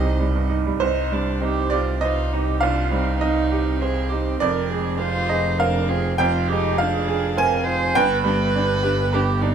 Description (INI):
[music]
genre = neoclassical piano and strings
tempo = 101 BPM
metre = 3/4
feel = rubato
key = C minor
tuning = A4 = 440 Hz
[part]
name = warm violin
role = melody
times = 0.0-9.5 s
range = C4 to C5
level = -30 LUFS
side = left 6 dB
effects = none
[part]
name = bright upright piano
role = accompaniment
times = 0.0-9.5 s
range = C2 to Ab5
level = -22 LUFS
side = right 4 dB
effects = none
[part]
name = rich viola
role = accompaniment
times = 0.0-9.5 s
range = Eb4 to Eb5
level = -26 LUFS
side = right 3 dB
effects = none
[part]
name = rich double bass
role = bass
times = 0.0-9.5 s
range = F1 to C2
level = -24 LUFS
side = right 1 dB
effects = none
[sound]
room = light reverb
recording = minimal, uncompressed stereo recording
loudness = -19 LUFS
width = side -8 dB against mid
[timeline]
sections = 0.8-9.5 A section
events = none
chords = 0.0 Cm; 4.4 Fm; 8.0 G